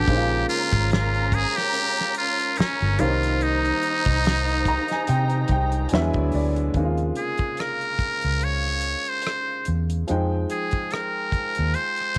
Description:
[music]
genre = R&B, neo-soul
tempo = 72 BPM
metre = 4/4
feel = swing 56% on 16ths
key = unclear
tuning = A4 = 440 Hz
[part]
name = trumpet with metal mute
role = melody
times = 0.0-12.2 s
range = Db4 to Db5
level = -27 LUFS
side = equal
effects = slapback echo
[part]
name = warm upright piano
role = accompaniment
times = 0.0-12.2 s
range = C3 to Bb5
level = -30 LUFS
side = equal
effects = none
[part]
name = dark studio string section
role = sustained chords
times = 0.0-6.7 s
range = Db4 to Bb5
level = -34 LUFS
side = equal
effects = none
[part]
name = vintage muted fingered electric bass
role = bass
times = 0.0-11.7 s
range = G1 to C3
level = -26 LUFS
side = equal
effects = none
[part]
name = damped 70s drum kit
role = drums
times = 0.1-12.2 s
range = hi-hat, kick drum, rim click, snare drum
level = -29 LUFS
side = equal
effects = none
[sound]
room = small room ambience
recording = none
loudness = -23 LUFS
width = mono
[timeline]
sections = 0.0-6.7 A section; 6.7-12.2 B section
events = upright piano fill 4.2-6.7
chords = 0.1 Bbm7; 3.0 Cm7; 5.9 E9; 6.7 Eb13sus4; 10.1 Fm9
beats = | 0.08 0.91 1.75 2.58 | 3.41 4.25 5.08 5.91 | 6.75 7.58 8.41 9.25 | 10.08 10.91 11.75

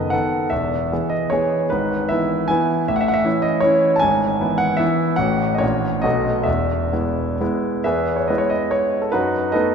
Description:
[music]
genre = classical, romantic triple-time dance for piano with dotted rhythms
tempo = 123-162 BPM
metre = 3/4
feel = rubato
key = E major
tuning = A4 = 440 Hz
[part]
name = clear concert grand piano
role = solo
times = 0.0-9.7 s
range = E1 to A5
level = -17 LUFS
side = equal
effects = none
[sound]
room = wet church reverb, RT60 2.8 s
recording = recorded in a church or concert hall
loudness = -17 LUFS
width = side -6 dB against mid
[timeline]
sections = 0.0-7.9 A section; 7.9-9.7 A section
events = none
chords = 0.0 B7/F#; 0.5 E; 1.7 E/G#; 2.9 A; 4.0 E/G#; 5.2 F#m7/A; 5.6 F#7/A#; 6.0 B7; 6.5 E; 9.1 B7/F#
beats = 0.13 | 0.52 0.91 1.32 | 1.71 2.11 2.50 | 2.88 3.26 3.65 | 4.03 4.42 4.82 | 5.20 5.62 6.05 | 6.48 6.94 7.41 | 7.87 8.30 8.73 | 9.13 9.55

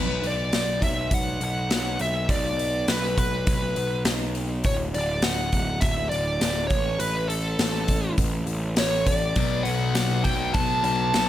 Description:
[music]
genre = quiet-loud alternative rock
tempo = 102 BPM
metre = 4/4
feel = straight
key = unclear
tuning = A4 = 440 Hz
[part]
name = bluesy overdriven lead guitar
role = melody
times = 0.0-11.3 s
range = A4 to A5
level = -27 LUFS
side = equal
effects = distortion
[part]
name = fuzz picked electric bass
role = bass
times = 0.0-11.3 s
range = D1 to B1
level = -28 LUFS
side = equal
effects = overdrive
[part]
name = big rock drum kit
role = drums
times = 0.2-11.3 s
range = hi-hat, kick drum, snare drum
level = -26 LUFS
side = equal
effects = none
[part]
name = twelve-string electric guitar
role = arpeggios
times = 9.4-11.3 s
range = B2 to F#4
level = -31 LUFS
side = left 2 dB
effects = lush chorus
[part]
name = thick fuzz guitar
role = riff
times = 9.4-11.3 s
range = B2 to B3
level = -28 LUFS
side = left 9 dB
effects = distortion
[sound]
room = light reverb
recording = none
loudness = -22 LUFS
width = side -12 dB against mid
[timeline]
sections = 0.0-11.3 A section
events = none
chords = 0.0 Bm; 4.6 D; 6.7 A; 9.4 Bm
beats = 0.53 1.12 1.71 | 2.29 2.88 3.47 4.06 | 4.65 5.24 5.83 6.41 | 7.00 7.59 8.18 8.77 | 9.36 9.95 10.54 11.14

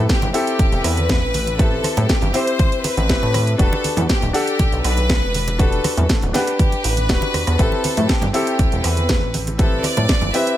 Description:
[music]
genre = nu-disco, nu disco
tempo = 120 BPM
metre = 4/4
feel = straight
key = A dorian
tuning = A4 = 441 Hz
[part]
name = clear studio violin section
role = melody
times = 0.0-10.6 s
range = G4 to E5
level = -23 LUFS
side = left 1 dB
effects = tape echo
[part]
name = warm grand piano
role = accompaniment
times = 0.0-10.6 s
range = C4 to F#5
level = -23 LUFS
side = left 1 dB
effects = ping-pong delay
[part]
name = chorused synth bass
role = bass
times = 0.0-10.3 s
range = D1 to A2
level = -20 LUFS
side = equal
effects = none
[part]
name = electronic kick drum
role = drums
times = 0.1-10.2 s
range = none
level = -18 LUFS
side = equal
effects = none
[part]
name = house drum kit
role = drums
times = 0.1-10.6 s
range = hi-hat, rim click, snare drum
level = -24 LUFS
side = right 1 dB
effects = none
[part]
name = congas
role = percussion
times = 0.2-10.4 s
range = none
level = -27 LUFS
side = right 2 dB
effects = none
[sound]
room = small room reverb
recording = none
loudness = -16 LUFS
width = side -12 dB against mid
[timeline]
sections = 0.0-10.6 A section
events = none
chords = 0.0 Am9; 3.6 Em7; 7.6 Am9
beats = 0.09 0.59 1.09 | 1.59 2.09 2.59 3.09 | 3.59 4.09 4.59 5.09 | 5.59 6.09 6.59 7.09 | 7.59 8.09 8.59 9.09 | 9.59 10.09

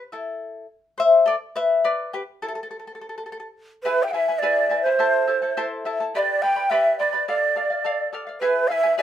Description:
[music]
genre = andean folk, Andean ensemble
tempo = 105 BPM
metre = 2/4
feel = straight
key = A minor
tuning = A4 = 442 Hz
[part]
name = charango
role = accompaniment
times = 0.1-9.0 s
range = E4 to B5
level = -23 LUFS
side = left 4 dB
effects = none
[part]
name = breathy hollow large quena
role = melody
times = 3.8-9.0 s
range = B4 to G5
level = -21 LUFS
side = right 3 dB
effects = none
[part]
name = breathy bright large pan pipes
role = second line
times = 3.9-9.0 s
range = B4 to G5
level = -24 LUFS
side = right 2 dB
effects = none
[sound]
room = light reverb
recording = minimal, uncompressed stereo recording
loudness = -19 LUFS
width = side -10 dB against mid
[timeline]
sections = 0.0-3.8 A section; 3.8-9.0 B section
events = charango solo 0.0-3.8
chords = 0.4 Am; 1.6 G; 2.7 N.C.; 3.8 E; 5.0 Am; 6.1 G; 7.3 Dm; 8.4 E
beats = | 0.41 0.98 | 1.55 2.12 | 2.70 3.27 | 3.84 4.42 | 4.99 5.56 | 6.13 6.71 | 7.28 7.85 | 8.42 8.98

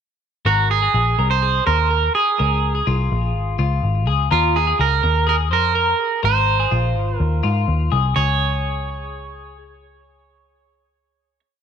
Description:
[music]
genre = jangly indie pop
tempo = 125 BPM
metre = 4/4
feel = straight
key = Db major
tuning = A4 = 438 Hz
[part]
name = electric guitar at the edge of break-up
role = melody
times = 0.5-11.4 s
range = F4 to Db5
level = -20 LUFS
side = right 11 dB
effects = tape echo
[part]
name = twelve-string electric guitar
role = arpeggios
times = 0.5-9.6 s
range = F4 to C5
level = -23 LUFS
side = left 14 dB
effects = spring reverb
[part]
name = vintage muted picked electric bass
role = bass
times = 0.5-11.4 s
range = Ab1 to Ab2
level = -20 LUFS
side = left 1 dB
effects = none
[sound]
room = digital ambience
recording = 1960s-style stereo with parts hard left and right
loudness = -16 LUFS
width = side -8 dB against mid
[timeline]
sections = 0.5-8.2 pre-chorus; 8.2-11.6 final chord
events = none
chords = 0.5 Ab; 2.4 Db; 4.3 Ebsus2; 6.2 Ab; 8.2 Db5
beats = | 0.46 0.94 1.43 1.91 | 2.39 2.87 3.35 3.83 | 4.32 4.80 5.28 5.76 | 6.24 6.72 7.20 7.68 | 8.16 8.64 9.13 9.61 | 10.09 10.57 11.06

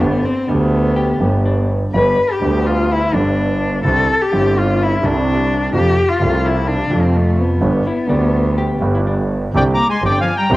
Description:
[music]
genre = tango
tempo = 126 BPM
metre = 4/4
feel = rubato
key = unclear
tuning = A4 = 441 Hz
[part]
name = dark cello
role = second line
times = 0.0-10.6 s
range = D3 to B4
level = -18 LUFS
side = left 2 dB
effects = cassette tape
[part]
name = dark grand piano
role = accompaniment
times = 0.0-10.6 s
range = G1 to G4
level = -18 LUFS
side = right 1 dB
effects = cassette tape
[part]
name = clear double bass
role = bass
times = 0.0-10.6 s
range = G1 to F2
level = -19 LUFS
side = right 1 dB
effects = none
[part]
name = hollow-body jazz guitar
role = second line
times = 1.0-1.8, 7.9-9.5 s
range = D4 to G4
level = -25 LUFS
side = left 2 dB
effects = cassette tape
[part]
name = bandoneon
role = melody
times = 9.6-10.6 s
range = D5 to D6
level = -16 LUFS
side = equal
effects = cassette tape
[sound]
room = moderate spring reverb, RT60 1.9 s, small room reverb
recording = home recording on cassette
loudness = -14 LUFS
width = side -18 dB against mid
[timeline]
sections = 0.0-9.5 A section; 9.5-10.6 B section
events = cello solo 0.0-9.5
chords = 0.0 Gadd9; 1.9 G; 3.8 Cadd9; 5.7 F; 7.6 G; 9.5 Csus2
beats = | 0.01 0.49 0.96 1.45 | 1.93 2.41 2.89 3.37 | 3.85 4.32 4.80 5.27 | 5.73 6.20 6.67 7.15 | 7.62 8.09 8.57 9.05 | 9.54 10.02 10.50

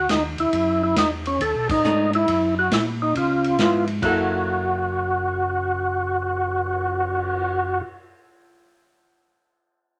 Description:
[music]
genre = soul jazz organ trio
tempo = 137 BPM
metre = 4/4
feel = swing 66% on 8ths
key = unclear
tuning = A4 = 437 Hz
[part]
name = overdriven tonewheel organ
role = melody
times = 0.0-7.8 s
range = C#4 to A4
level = -24 LUFS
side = equal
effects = slow rotary speaker, chorus vibrato
[part]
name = mellow tonewheel organ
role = bass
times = 0.0-7.8 s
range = F#1 to C#3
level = -30 LUFS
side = equal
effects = slow rotary speaker
[part]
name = vintage drum kit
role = drums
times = 0.1-7.4 s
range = crash cymbal, cymbal swell, hi-hat, kick drum, ride cymbal, snare drum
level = -31 LUFS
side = equal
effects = none
[part]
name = archtop guitar, miked and amplified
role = accompaniment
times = 1.8-7.9 s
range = E#3 to A4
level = -28 LUFS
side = equal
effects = none
[sound]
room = moderate club reverb, RT60 0.7 s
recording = none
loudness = -22 LUFS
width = mono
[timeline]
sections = 0.0-4.0 A section; 4.0-7.5 B section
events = band accent 1.6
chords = 0.0 B(#9) (rootless); 0.5 C#madd11; 1.4 B7#9; 2.3 F#; 3.1 C#7#9; 4.0 F#7#9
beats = 0.09 | 0.53 0.96 1.40 1.84 | 2.27 2.71 3.15 3.59 | 4.02 4.46 4.90 5.33 | 5.77 6.21 6.65 7.08

